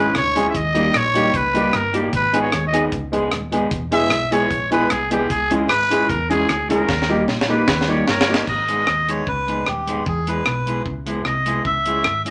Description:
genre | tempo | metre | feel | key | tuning
ska | 151 BPM | 4/4 | straight | G# harmonic minor | A4 = 440 Hz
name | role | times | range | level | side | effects
growling trumpet | melody | 0.0-8.4 s | G4 to E5 | -22 LUFS | equal | tube saturation
mellow electric guitar | accompaniment | 0.0-12.3 s | G3 to G#4 | -28 LUFS | equal | none
dark upright piano | stabs | 0.0-8.4 s | G3 to G#4 | -24 LUFS | equal | none
hollow-body short-scale fingered electric bass | bass | 0.0-12.3 s | D#1 to E2 | -30 LUFS | equal | none
deep reggae drum kit | drums | 0.1-12.3 s | crash cymbal, hi-hat, kick drum, rim click, snare drum | -25 LUFS | equal | none
melodica | melody | 8.1-12.3 s | G4 to E5 | -24 LUFS | equal | none
room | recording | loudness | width
wet club reverb, RT60 0.6 s | none | -19 LUFS | mono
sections
0.0-8.5 A section; 8.5-12.3 B section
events
trumpet solo 0.0-8.5; drum fill 6.9-8.5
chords
0.0 C#m; 0.5 D#; 2.1 G#m; 3.7 E; 5.3 C#m; 6.9 D#; 8.5 G#m; 10.1 E; 11.7 C#m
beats
0.15 | 0.55 0.94 1.34 1.74 | 2.13 2.53 2.92 3.32 | 3.72 4.11 4.51 4.91 | 5.30 5.70 6.09 6.49 | 6.89 7.28 7.68 8.08 | 8.47 8.87 9.27 9.66 | 10.06 10.46 10.86 11.26 | 11.65 12.05

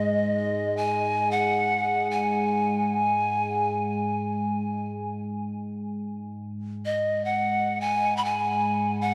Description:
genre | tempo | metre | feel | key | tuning
world meditative, free-time meditation music | free time | none | none | unclear | A4 = 440 Hz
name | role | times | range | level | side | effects
breathy mellow polished pan flute | melody | 0.0-9.1 s | D#5 to B5 | -27 LUFS | equal | tape echo
analog drone | drone | 0.0-9.1 s | G#2 to G#3 | -32 LUFS | equal | chorus
room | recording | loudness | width
wet cathedral reverb, RT60 5.6 s | dreamy mix soaked in reverb | -26 LUFS | mono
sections
0.0-9.1 A section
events
none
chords
none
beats
free time

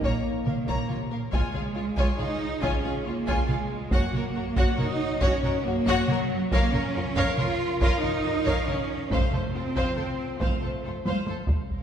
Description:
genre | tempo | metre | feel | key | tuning
cinematic, epic orchestral film score | 139 BPM | 3/4 | straight | Bb minor | A4 = 440 Hz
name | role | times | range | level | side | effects
clear symphonic violin section | melody | 0.0-11.8 s | A4 to Bb5 | -35 LUFS | left 3 dB | none
rich chamber violin section | second line | 0.0-11.8 s | F4 to Db5 | -34 LUFS | left 2 dB | none
clear symphonic viola section | accompaniment | 0.0-11.8 s | Bb3 to C5 | -35 LUFS | right 1 dB | none
dark French horn section | sustained chords | 0.0-11.8 s | Bb3 to Db5 | -35 LUFS | left 3 dB | none
rich symphonic cello section | bass | 0.0-11.8 s | Bb2 to F4 | -30 LUFS | right 3 dB | none
rich symphonic double bass section | bass | 0.0-11.8 s | Bb1 to Gb2 | -35 LUFS | right 3 dB | none
taiko ensemble | drums | 0.0-11.8 s | none | -28 LUFS | equal | none
timpani | percussion | 9.1-9.7 s | F2 | -39 LUFS | equal | none
room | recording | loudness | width
wet church reverb, RT60 2.8 s | recorded in a church or concert hall | -24 LUFS | side -8 dB against mid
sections
0.0-1.3 A section; 1.3-11.7 B section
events
drum fill 11.1-11.7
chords
0.0 Bbm; 1.3 Db; 3.9 Gb; 6.5 Bbm/F; 9.1 F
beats
| 0.03 0.46 0.90 | 1.33 1.76 2.19 | 2.63 3.06 3.49 | 3.92 4.36 4.79 | 5.22 5.65 6.08 | 6.52 6.95 7.38 | 7.81 8.25 8.68 | 9.11 9.54 9.98 | 10.41 10.84 11.28 | 11.71

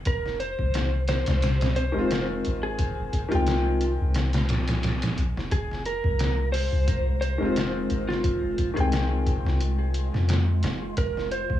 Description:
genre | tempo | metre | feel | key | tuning
trip hop | 88 BPM | 4/4 | swing 55% on 16ths | F minor | A4 = 443 Hz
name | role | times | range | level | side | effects
warm upright piano | accompaniment | 0.0-11.6 s | Eb3 to G5 | -29 LUFS | left 3 dB | harmonic tremolo, tape echo
soft 808-style bass | bass | 0.0-11.6 s | Eb1 to F2 | -26 LUFS | equal | none
electric slide guitar | melody | 0.1-11.6 s | F4 to C5 | -30 LUFS | right 1 dB | vintage 12-bit sampler grit, tape echo
trip hop sampler-style drum kit | drums | 0.1-11.6 s | hi-hat, kick drum, snare drum | -28 LUFS | equal | overdrive
wind-like tuned noise texture | texture | 5.9-11.6 s | Ab3 to F4 | -37 LUFS | right 3 dB | built-in reverb
room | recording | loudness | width
digital ambience | echo-heavy mix, small room ambience | -23 LUFS | side -12 dB against mid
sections
0.0-11.6 A section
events
none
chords
0.0 Fm7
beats
| 0.06 0.74 1.42 2.10 | 2.78 3.46 4.15 4.83 | 5.51 6.19 6.88 7.56 | 8.24 8.92 9.60 10.28 | 10.96

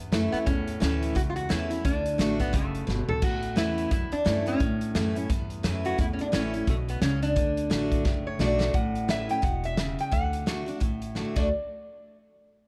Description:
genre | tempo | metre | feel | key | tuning
honky-tonk and classic country | 174 BPM | 4/4 | swing 60% on 8ths | D major | A4 = 440 Hz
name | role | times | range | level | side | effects
lap resonator guitar | melody | 0.0-11.5 s | A3 to G5 | -33 LUFS | equal | none
picked steel-string acoustic guitar | accompaniment | 0.0-11.5 s | E2 to F#4 | -33 LUFS | equal | none
upright bass | bass | 0.0-11.5 s | E1 to A2 | -34 LUFS | equal | none
natural country drum kit | drums | 0.1-11.4 s | crash cymbal, hi-hat, kick drum, snare drum, toms | -31 LUFS | equal | none
room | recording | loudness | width
light reverb | dark, warm production | -27 LUFS | mono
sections
0.0-8.7 A section; 8.7-11.5 B section; 11.5-12.7 C section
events
drum fill 2.9-3.2, 8.1-8.7, 11.2-11.5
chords
0.0 A; 1.8 D; 3.2 A; 7.4 D; 8.7 A; 10.1 D; 11.5 N.C.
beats
0.12 | 0.47 0.81 1.15 1.50 | 1.84 2.19 2.53 2.88 | 3.22 3.57 3.91 4.26 | 4.60 4.95 5.29 5.64 | 5.98 6.33 6.67 7.02 | 7.36 7.71 8.05 8.39 | 8.74 9.09 9.43 9.78 | 10.12 10.46 10.81 11.15

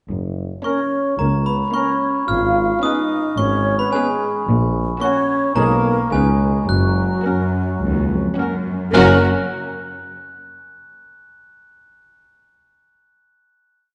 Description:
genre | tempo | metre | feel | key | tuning
cinematic, playful, whimsical film cue | 109 BPM | 4/4 | straight | F# major | A4 = 440 Hz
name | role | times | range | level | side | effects
dark chamber double bass section | bass | 0.1-9.2 s | F#1 to C#2 | -27 LUFS | equal | none
rich chamber cello section | bass | 0.1-9.2 s | C#2 to C#3 | -26 LUFS | equal | none
warm tuba | bass | 0.1-9.2 s | F#1 to C#2 | -26 LUFS | equal | none
glockenspiel with brass mallets | melody | 0.6-9.2 s | G#5 to F#6 | -26 LUFS | equal | none
rich chamber violin section | melody | 0.6-9.2 s | E#4 to A#4 | -29 LUFS | equal | none
mellow hollow small flute group | second line | 0.6-9.2 s | F#4 to E#5 | -27 LUFS | equal | none
mellow oboe | second line | 0.6-9.2 s | F#4 to B4 | -30 LUFS | equal | none
warm clarinet | second line | 0.6-9.2 s | C#4 to D#4 | -31 LUFS | equal | none
rich chamber viola section | accompaniment | 0.6-9.2 s | G#3 to B3 | -30 LUFS | equal | none
clear French horn section | sustained chords | 0.6-9.2 s | F#3 to E#4 | -25 LUFS | equal | none
warm chamber violin section | second line | 0.7-9.2 s | C#4 to D#4 | -29 LUFS | equal | none
room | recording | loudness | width
wet scoring stage reverb, RT60 2.1 s | dark, warm production, nothing above 10.8 kHz | -18 LUFS | mono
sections
0.1-8.9 A section; 8.9-11.2 final chord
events
none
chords
0.1 F#; 2.3 C#7/G#; 4.5 F#/A#; 5.6 G#m/B; 6.1 C#9; 6.7 F#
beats
| 0.09 0.65 1.19 1.74 | 2.29 2.83 3.38 3.92 | 4.47 5.02 5.57 6.12 | 6.68 7.25 7.82 8.38 | 8.94

